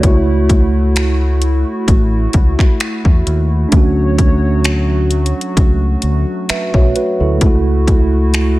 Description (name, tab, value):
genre	contemporary R&B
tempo	65 BPM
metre	4/4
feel	swing 54% on 16ths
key	unclear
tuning	A4 = 439 Hz
part	mellow tine electric piano	accompaniment	0.0-8.6 s	G#3 to E5	-18 LUFS	right 2 dB	medium stereo tremolo
part	hollow soft pad	sustained chords	0.0-8.6 s	F#3 to C#5	-22 LUFS	left 1 dB	chorus
part	deep dub fingered electric bass	bass	0.0-8.6 s	A1 to E2	-15 LUFS	equal	none
part	trap drum kit	drums	0.0-8.6 s	finger snaps, hi-hat, kick drum	-13 LUFS	equal	vintage 12-bit sampler grit
room	little or no reverb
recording	none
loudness	-11 LUFS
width	side -18 dB against mid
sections	0.0-8.6 A section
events	none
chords	0.0 F#m7/C#; 3.7 Dmaj7; 7.4 F#m7/C#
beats	| 0.03 0.95 1.88 2.80 | 3.72 4.65 5.57 6.49 | 7.42 8.34